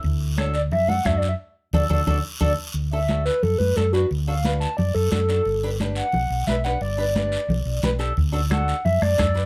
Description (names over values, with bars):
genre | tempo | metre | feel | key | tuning
latin, cumbia | 177 BPM | 4/4 | straight | D major | A4 = 440 Hz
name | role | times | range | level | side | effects
hollow-body short-scale fingered electric bass | bass | 0.0-9.5 s | G1 to F#2 | -26 LUFS | equal | none
bombo | percussion | 0.0-2.5, 8.2-9.4 s | none | -28 LUFS | equal | none
guiro | percussion | 0.0-9.5 s | none | -39 LUFS | equal | none
hollow clarinet-like synth lead | melody | 0.4-9.5 s | F#4 to A5 | -26 LUFS | equal | chorus
flamenco guitar | accompaniment | 0.4-9.5 s | D4 to B4 | -31 LUFS | equal | none
congas | percussion | 0.4-9.4 s | none | -30 LUFS | equal | none
room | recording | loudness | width
little or no reverb | close, detailed microphones | -22 LUFS | mono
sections
0.0-2.7 A section; 2.7-9.5 B section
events
band accent 1.4-2.7; drum fill 1.7-2.7; nylon-string guitar fill 1.7-2.7; soft synth lead solo 2.7-9.5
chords
0.0 D; 5.5 G; 8.2 D